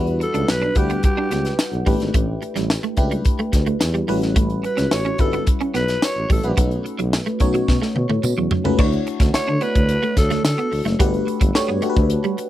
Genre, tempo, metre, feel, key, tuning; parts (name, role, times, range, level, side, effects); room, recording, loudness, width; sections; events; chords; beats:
polished 1980s jazz-funk pop; 108 BPM; 4/4; straight; A4 = 439 Hz
FM electric piano; accompaniment; 0.0-12.5 s; G3 to F#5; -24 LUFS; left 2 dB; phaser, wide subtle chorus
clean electric guitar; riff; 0.0-12.4 s; F#3 to D4; -25 LUFS; right 4 dB; ensemble chorus
breathy tuba; bass; 0.0-12.2 s; F#1 to D3; -23 LUFS; equal
tight funk drum kit; drums; 0.1-12.5 s; crash cymbal, hi-hat, kick drum, snare drum, toms; -20 LUFS; equal
breathy alto saxophone; melody; 0.2-10.8 s; G4 to C#5; -25 LUFS; equal; tape echo
tambourine; percussion; 0.5-11.7 s; -34 LUFS; right 8 dB
little or no reverb; dry, close 1970s-style studio recording; -17 LUFS; side -13 dB against mid
0.0-8.8 A section; 8.8-12.5 B section
drum fill 7.7-8.8
0.0 Em9; 1.9 A7sus4; 4.1 A13; 6.6 B7; 8.8 Dmaj9; 11.0 Gmaj9
0.48 1.04 1.59 | 2.14 2.70 3.25 3.81 | 4.36 4.91 5.47 6.02 | 6.58 7.13 7.68 8.23 | 8.79 9.34 9.89 10.45 | 11.00 11.55 12.11